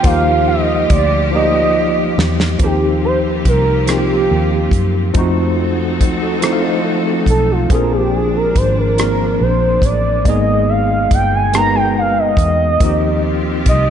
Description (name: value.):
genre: slow six-eight R&B.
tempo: 47 BPM (dotted quarters).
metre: 6/8.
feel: straight.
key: Eb major.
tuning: A4 = 439 Hz.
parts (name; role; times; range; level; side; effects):
gliding portamento lead; melody; 0.0-13.9 s; F4 to Bb5; -17 LUFS; right 2 dB; chorus, slapback echo.
tine electric piano; accompaniment; 0.0-13.9 s; F3 to F5; -18 LUFS; left 1 dB; overdrive, fast stereo tremolo, slapback echo.
clear studio string section; sustained chords; 0.0-13.9 s; Cb3 to A4; -25 LUFS; left 1 dB; none.
damped 70s drum kit; drums; 0.0-13.9 s; hi-hat, kick drum, rim click, snare drum; -16 LUFS; equal; none.
vintage muted fingered electric bass; bass; 0.1-13.9 s; G1 to Gb2; -18 LUFS; equal; none.
electric guitar at the edge of break-up; second line; 6.2-7.7 s; Gb4 to Eb5; -24 LUFS; right 5 dB; wide subtle chorus, slapback echo, tape echo.
room: moderate lush hall reverb, RT60 2.6 s.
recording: big arena sound, nothing above 10.7 kHz.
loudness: -12 LUFS.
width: side -8 dB against mid.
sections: 0.0-2.6 A section; 2.6-13.9 B section.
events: drum fill 1.3-2.6; soft synth lead solo 2.6-13.9.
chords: 0.0 Ebmaj9; 2.6 Eb69; 5.1 F7b9; 7.7 Bb9; 10.3 Abmadd9; 12.8 Eb69.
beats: | 0.04 1.32 | 2.60 3.87 | 5.15 6.42 | 7.70 8.98 | 10.26 11.53 | 12.81.